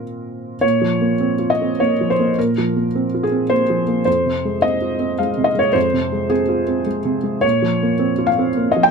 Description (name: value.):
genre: neoclassical minimalist piano.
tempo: 106 BPM.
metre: 3/4.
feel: rubato.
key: Bb minor.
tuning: A4 = 440 Hz.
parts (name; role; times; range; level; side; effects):
felt-muted upright piano; solo; 0.0-8.9 s; F2 to G5; -16 LUFS; equal; none.
room: light reverb.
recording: close, detailed microphones.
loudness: -16 LUFS.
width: side -5 dB against mid.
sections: 0.6-8.9 A section.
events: none.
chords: 0.0 Bbsus2; 4.1 Fm; 7.4 Bbmadd9.